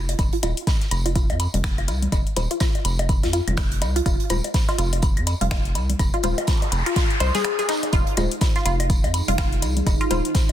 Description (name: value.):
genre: minimal techno.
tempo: 124 BPM.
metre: 4/4.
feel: swing 59% on 16ths.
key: F minor.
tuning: A4 = 440 Hz.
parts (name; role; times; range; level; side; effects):
rubbery square bass; bass; 0.0-10.2 s; Eb1 to F2; -24 LUFS; equal; sidechain pumping.
big rock drum kit; drums; 0.1-10.5 s; hi-hat, snare drum, tambourine; -35 LUFS; right 1 dB; high-pass filter on hats, high-pass filter on snare, high-pass filter on perc, high-pass filter on room.
garage drum kit; drums; 0.1-10.5 s; finger snaps, hi-hat; -30 LUFS; left 4 dB; soft clipping on snare.
bongos, woodblock, claves and congas; percussion; 0.1-10.5 s; none; -30 LUFS; equal; overdrive.
electronic kick drum; drums; 0.2-10.5 s; none; -21 LUFS; equal; none.
resonant blip pluck; riff; 0.3-10.2 s; Eb4 to C5; -27 LUFS; equal; phaser, sidechain pumping, tape echo.
filtered dub chord stab; stabs; 0.4-10.2 s; Ab3 to C5; -29 LUFS; left 3 dB; chorus, digital delay.
noise sweep; sound effects; 6.2-7.9 s; none; -30 LUFS; right 1 dB; none.
deep dark ambient pad; texture; 8.3-10.5 s; Eb4 to C5; -30 LUFS; right 3 dB; chorus, built-in reverb, sidechain pumping.
room: digital ambience.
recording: dense, heavily limited modern master.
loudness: -19 LUFS.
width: side -11 dB against mid.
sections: 0.0-7.9 A section; 7.9-10.5 B section.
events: filter sweep on synth pluck 0.0-7.9; filter sweep on synth stab 0.0-7.9; noise sweep 6.2-7.9; break 7.4-7.9; drop 7.9-10.5.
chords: 0.0 F5; 7.9 Fm.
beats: | 0.19 0.67 1.16 1.64 | 2.12 2.61 3.09 3.58 | 4.06 4.54 5.03 5.51 | 5.99 6.48 6.96 7.45 | 7.93 8.41 8.90 9.38 | 9.87 10.35.